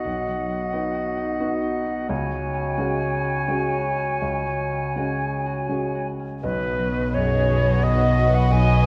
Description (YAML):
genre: cinematic, emotional film score for orchestra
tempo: 81-89 BPM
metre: 3/4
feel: rubato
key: B major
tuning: A4 = 440 Hz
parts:
  - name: silver concert flute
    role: second line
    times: 0.0-8.9 s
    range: B4 to G#5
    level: -29 LUFS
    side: equal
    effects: none
  - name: warm clarinet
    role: second line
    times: 0.0-6.1 s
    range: F#4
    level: -36 LUFS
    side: equal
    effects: none
  - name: warm oboe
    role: second line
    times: 0.0-6.1 s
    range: C#5 to D#5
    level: -32 LUFS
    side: equal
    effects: none
  - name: warm grand piano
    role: accompaniment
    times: 0.0-8.9 s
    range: B1 to F#4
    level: -31 LUFS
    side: equal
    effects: none
  - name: concert harp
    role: arpeggios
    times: 0.0-8.9 s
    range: B2 to D#5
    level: -32 LUFS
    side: equal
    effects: none
  - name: warm chamber violin section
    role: melody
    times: 6.4-8.9 s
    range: D#5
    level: -36 LUFS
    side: equal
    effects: none
  - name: warm symphonic violin section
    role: second line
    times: 6.4-8.9 s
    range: F#4 to B4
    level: -34 LUFS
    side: equal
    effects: none
  - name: rich symphonic double bass section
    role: bass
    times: 6.4-8.9 s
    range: B1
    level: -25 LUFS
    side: equal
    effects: none
  - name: warm symphonic cello section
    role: bass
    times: 6.4-8.9 s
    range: B2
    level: -25 LUFS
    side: equal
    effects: none
  - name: dark symphonic viola section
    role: accompaniment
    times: 7.2-8.9 s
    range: F#4 to D#5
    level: -34 LUFS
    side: equal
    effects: none
room: wet scoring stage reverb, RT60 1.6 s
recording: dark, warm production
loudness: -23 LUFS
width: mono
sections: 0.0-6.4 A section; 6.4-8.9 B section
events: none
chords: 0.0 B; 2.1 C#sus4; 6.4 B